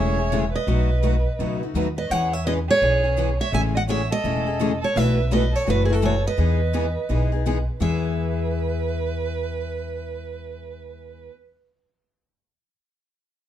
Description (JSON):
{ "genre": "acoustic string swing (jazz manouche)", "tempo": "168 BPM", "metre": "4/4", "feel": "swing 63% on 8ths", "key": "E major", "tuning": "A4 = 439 Hz", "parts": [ { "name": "picked steel-string acoustic guitar", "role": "melody", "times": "0.0-11.3 s", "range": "G#4 to G#5", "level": "-25 LUFS", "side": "right 1 dB", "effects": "none" }, { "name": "warm violin", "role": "second line", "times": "0.0-11.3 s", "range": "E4 to E5", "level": "-30 LUFS", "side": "right 7 dB", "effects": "none" }, { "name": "picked steel-string acoustic guitar", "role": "accompaniment", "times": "0.0-11.3 s", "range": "B2 to B4", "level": "-27 LUFS", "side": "left 7 dB", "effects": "none" }, { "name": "picked steel-string acoustic guitar", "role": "accompaniment", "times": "0.0-11.3 s", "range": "B2 to B4", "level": "-33 LUFS", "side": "right 6 dB", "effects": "none" }, { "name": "upright bass", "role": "bass", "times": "0.0-11.3 s", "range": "E1 to E2", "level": "-23 LUFS", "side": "equal", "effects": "none" } ], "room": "light reverb", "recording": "dark, warm production", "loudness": "-20 LUFS", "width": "side -11 dB against mid", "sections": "0.0-7.8 A section; 7.8-10.7 B section", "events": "none", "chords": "0.0 Amaj7; 0.7 B7; 2.1 E6; 3.5 Amaj7; 5.0 B7sus4; 6.4 Emaj7; 7.8 E", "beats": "0.32 | 0.68 1.03 1.39 1.75 | 2.10 2.46 2.82 3.17 | 3.53 3.88 4.24 4.60 | 4.95 5.31 5.67 6.02 | 6.38 6.74 7.09 7.45 | 7.81 8.16 8.52 8.88 | 9.23 9.59 9.95 10.31" }